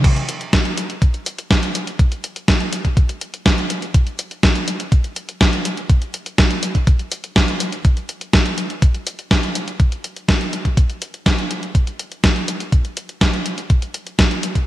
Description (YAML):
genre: italo disco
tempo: 123 BPM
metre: 4/4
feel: straight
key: none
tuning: none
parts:
  - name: clean 12-bit digital drum machine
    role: drums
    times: 0.0-14.7 s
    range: crash cymbal, hi-hat, snare drum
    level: -19 LUFS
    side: equal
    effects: gated reverb
  - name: electronic kick drum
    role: drums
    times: 0.0-14.7 s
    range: none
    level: -15 LUFS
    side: equal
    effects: none
room: moderate lush hall reverb, RT60 2.0 s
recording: bright 1980s-style digital production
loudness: -16 LUFS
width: side -15 dB against mid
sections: 0.0-14.7 A section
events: none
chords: none